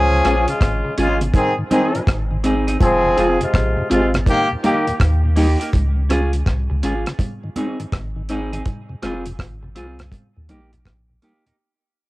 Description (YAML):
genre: roots reggae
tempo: 82 BPM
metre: 4/4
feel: swing 64% on 16ths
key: Db lydian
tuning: A4 = 440 Hz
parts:
  - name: warm horn section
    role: second line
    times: 0.0-4.9 s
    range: C3 to Ab4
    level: -18 LUFS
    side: left 1 dB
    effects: cassette tape, dub echo, plate reverb
  - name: soft dub sub bass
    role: bass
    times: 0.0-11.2 s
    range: F1 to Eb2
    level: -20 LUFS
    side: equal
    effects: none
  - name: mellow tonewheel organ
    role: accompaniment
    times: 0.1-11.5 s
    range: Eb2 to F4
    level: -24 LUFS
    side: left 1 dB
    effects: slow rotary speaker, cassette tape
  - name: semi-hollow electric guitar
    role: accompaniment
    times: 0.2-11.6 s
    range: Bb3 to Ab4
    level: -24 LUFS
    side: right 1 dB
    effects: cassette tape, dub echo, plate reverb
  - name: deep reggae drum kit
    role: drums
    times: 0.2-11.6 s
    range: hi-hat, kick drum, rim click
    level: -21 LUFS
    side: equal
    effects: cassette tape
  - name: congas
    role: percussion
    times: 1.2-11.6 s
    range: none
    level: -30 LUFS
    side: right 3 dB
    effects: none
room: light reverb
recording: home recording on cassette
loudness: -16 LUFS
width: side -19 dB against mid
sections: 0.0-5.7 A section; 5.7-11.6 B section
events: fade-out 5.7-11.6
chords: 0.0 Db; 1.3 Ab; 2.8 Fm; 4.3 Eb; 5.7 Db; 7.2 Ab; 8.7 Fm; 10.1 Eb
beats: 0.61 1.34 2.07 | 2.80 3.54 4.27 5.00 | 5.73 6.46 7.20 7.93 | 8.66 9.39 10.12 10.86